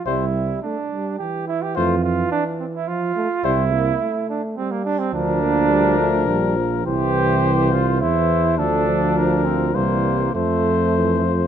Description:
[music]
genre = classical, brass quintet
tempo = 105 BPM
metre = 3/4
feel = rubato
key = unclear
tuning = A4 = 441 Hz
[part]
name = mellow flugelhorn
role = second line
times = 0.0-11.5 s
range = A3 to G4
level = -22 LUFS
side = right 6 dB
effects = none
[part]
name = warm trombone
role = accompaniment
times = 0.0-11.5 s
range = D3 to Bb3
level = -25 LUFS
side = right 1 dB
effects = none
[part]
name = mellow trumpet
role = melody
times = 0.1-11.5 s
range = A4 to C5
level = -24 LUFS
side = left 12 dB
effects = none
[part]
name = mellow French horn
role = accompaniment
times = 0.1-11.5 s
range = E3 to A3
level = -26 LUFS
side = left 5 dB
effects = none
[part]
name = mellow tuba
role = bass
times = 0.1-11.5 s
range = Bb1 to F2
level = -21 LUFS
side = right 3 dB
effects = none
[sound]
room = moderate recital hall reverb, RT60 1.3 s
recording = close, detailed microphones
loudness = -17 LUFS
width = side -9 dB against mid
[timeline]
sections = 0.0-11.5 A section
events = none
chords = 0.1 C; 1.8 F; 3.4 C; 5.1 Bb/D; 6.9 C; 8.6 Dm; 9.8 C7; 10.4 F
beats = | 0.06 0.63 1.20 | 1.76 2.33 2.89 | 3.45 4.02 4.58 | 5.14 5.70 6.27 | 6.86 7.44 8.02 | 8.59 9.16 9.75 | 10.35 10.96

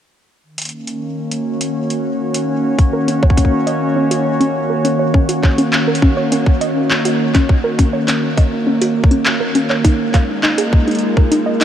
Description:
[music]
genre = IDM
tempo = 102 BPM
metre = 4/4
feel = straight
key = Eb minor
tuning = A4 = 438 Hz
[part]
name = warbly tape-like pad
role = sustained chords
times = 0.7-11.6 s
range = Eb3 to Db5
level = -17 LUFS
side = equal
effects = chorus, built-in reverb
[part]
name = electro analog drum machine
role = drums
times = 0.6-11.6 s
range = handclaps, hi-hat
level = -21 LUFS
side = equal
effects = tape echo
[part]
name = electronic kick drum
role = drums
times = 2.8-11.3 s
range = none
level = -12 LUFS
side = equal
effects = none
[part]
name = warbly dusty pluck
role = arpeggios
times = 2.9-11.6 s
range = Db4 to F5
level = -19 LUFS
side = equal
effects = chorus, vintage 12-bit sampler grit, diffuse ambient delay
[sound]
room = moderate huge ambient reverb, RT60 8.4 s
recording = dreamy mix soaked in reverb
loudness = -13 LUFS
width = side -10 dB against mid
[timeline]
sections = 0.4-5.1 A section; 5.1-11.6 B section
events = kick drops out 4.0-5.1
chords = 0.4 Ebm7; 9.8 Bb7sus4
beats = | 0.43 1.02 1.61 2.20 | 2.79 3.38 3.96 4.55 | 5.14 5.73 6.32 6.90 | 7.49 8.08 8.67 9.26 | 9.85 10.43 11.02 11.61

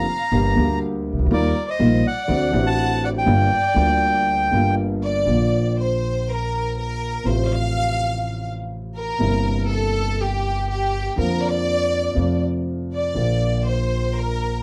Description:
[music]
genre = tango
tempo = 122 BPM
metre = 4/4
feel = rubato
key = G minor, Bb major from 5.3 s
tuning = A4 = 440 Hz
[part]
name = bandoneon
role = melody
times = 0.0-4.7 s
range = D5 to Bb5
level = -24 LUFS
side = equal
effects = none
[part]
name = clear studio violin section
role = second line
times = 0.0-14.6 s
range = G4 to F#5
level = -28 LUFS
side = equal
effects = none
[part]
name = dark concert grand piano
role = accompaniment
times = 0.0-14.6 s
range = G1 to G4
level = -26 LUFS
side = equal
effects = none
[part]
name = upright bass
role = bass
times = 0.0-14.6 s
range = G1 to F2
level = -26 LUFS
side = equal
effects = none
[sound]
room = moderate studio ambience, RT60 0.5 s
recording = dark, warm production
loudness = -21 LUFS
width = mono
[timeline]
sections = 0.0-5.3 A section; 5.3-14.6 B section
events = violin section solo 5.3-14.6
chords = 0.3 Gm; 1.3 Ebadd9; 2.3 D7; 3.3 Gm7; 5.3 Bb; 7.3 F/A; 9.2 C7/G; 11.2 Bb/F; 12.2 F; 13.2 Bb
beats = 0.33 0.81 | 1.30 1.79 2.28 2.78 | 3.27 3.77 4.27 4.77 | 5.28 5.78 6.27 6.77 | 7.26 7.75 8.24 8.72 | 9.21 9.70 10.19 10.68 | 11.17 11.67 12.16 12.66 | 13.16 13.65 14.15

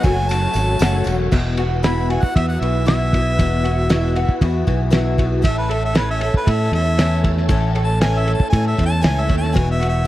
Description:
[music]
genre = folk rock and heartland rock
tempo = 117 BPM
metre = 4/4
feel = straight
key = unclear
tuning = A4 = 439 Hz
[part]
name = clear harmonica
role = melody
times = 0.0-10.1 s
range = B4 to B5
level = -23 LUFS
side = equal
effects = none
[part]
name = picked twelve-string acoustic guitar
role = accompaniment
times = 0.0-10.1 s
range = E2 to A4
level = -26 LUFS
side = left 6 dB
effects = none
[part]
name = tonewheel organ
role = sustained chords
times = 0.0-10.1 s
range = A4 to A5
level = -34 LUFS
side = equal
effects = slow rotary speaker, chorus vibrato
[part]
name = electric guitar through a small old amp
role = riff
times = 0.0-10.1 s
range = E2 to A4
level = -25 LUFS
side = right 2 dB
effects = ensemble chorus
[part]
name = fingered electric bass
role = bass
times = 0.0-10.1 s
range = E1 to A2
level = -19 LUFS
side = equal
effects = none
[part]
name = cloth-damped thuddy drum kit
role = drums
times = 0.0-9.9 s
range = crash cymbal, kick drum, ride cymbal, snare drum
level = -19 LUFS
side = equal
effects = none
[part]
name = tambourine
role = percussion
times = 0.0-1.2, 9.6-9.9 s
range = none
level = -39 LUFS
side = right 6 dB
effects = none
[sound]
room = little or no reverb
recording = dry, close 1970s-style studio recording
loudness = -15 LUFS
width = side -15 dB against mid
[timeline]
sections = 0.0-1.3 A section; 1.3-10.1 B section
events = harmonica solo 1.3-10.1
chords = 0.0 F#m; 1.3 Esus2; 5.4 A; 9.6 Esus2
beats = 0.30 0.81 | 1.32 1.84 2.35 2.86 | 3.38 3.89 4.41 4.92 | 5.44 5.95 6.47 6.98 | 7.50 8.01 8.52 9.04 | 9.55 10.07

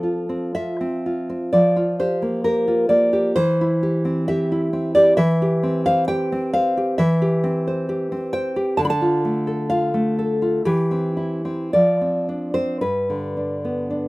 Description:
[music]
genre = romantic piece for solo classical guitar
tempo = 54-68 BPM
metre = 2/4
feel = rubato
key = C major from 7.0 s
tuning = A4 = 440 Hz
[part]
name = nylon-string guitar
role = solo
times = 0.0-14.1 s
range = G2 to B5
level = -18 LUFS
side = equal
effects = none
[sound]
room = light reverb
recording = rough home demo mix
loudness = -18 LUFS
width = side -21 dB against mid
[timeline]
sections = 0.0-14.1 A section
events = none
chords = 0.0 F; 1.5 Gm7/F; 3.4 C/E; 8.8 Dm; 10.6 C/E; 11.7 Dm7/F; 12.8 G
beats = 0.55 | 1.53 2.46 | 3.37 4.28 | 5.18 6.09 | 6.99 7.89 | 8.79 9.69 | 10.64 11.72 | 12.80 13.90

